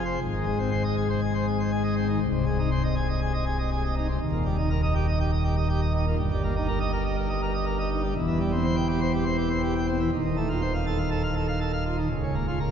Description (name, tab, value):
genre	classical, organ toccata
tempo	121 BPM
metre	4/4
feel	straight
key	Ab major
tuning	A4 = 439 Hz
part	pipe organ, plenum	solo	0.0-12.7 s	C1 to G5	-23 LUFS	equal	none
room	wet cathedral reverb, RT60 5.1 s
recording	recorded in a church or concert hall, nothing above 7.5 kHz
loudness	-24 LUFS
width	side -8 dB against mid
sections	0.2-12.7 A section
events	none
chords	0.2 Ab; 2.2 Ab/C; 4.2 Eb; 6.2 Eb/G; 8.2 C/E; 10.1 F7/Eb; 12.1 Bbm/Db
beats	| 0.22 0.72 1.22 1.72 | 2.21 2.71 3.21 3.71 | 4.20 4.70 5.19 5.69 | 6.18 6.68 7.17 7.67 | 8.15 8.65 9.14 9.63 | 10.12 10.62 11.11 11.61 | 12.10 12.60